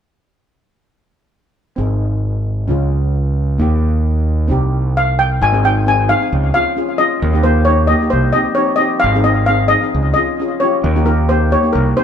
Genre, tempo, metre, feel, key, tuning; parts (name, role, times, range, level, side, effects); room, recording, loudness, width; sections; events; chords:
calypso; 132 BPM; 4/4; straight; Ab major; A4 = 438 Hz
steel pan; accompaniment; 1.8-12.0 s; Bb3 to Ab4; -20 LUFS; equal
growling fingered electric bass; bass; 1.8-11.9 s; Ab1 to Eb2; -15 LUFS; right 1 dB; overdrive
steel pan; melody; 5.0-12.0 s; Bb4 to Ab5; -15 LUFS; left 2 dB; ping-pong delay
wet studio reverb, RT60 0.8 s; band playing live in one room; -13 LUFS; side -8 dB against mid
1.8-5.4 A section; 5.4-12.0 B section
1.8 Ab; 2.7 Db; 3.6 Eb; 4.5 Cm; 5.4 Ab; 6.3 Db; 7.2 Eb; 8.1 Cm; 9.0 Ab; 9.9 Dbadd9; 10.8 Eb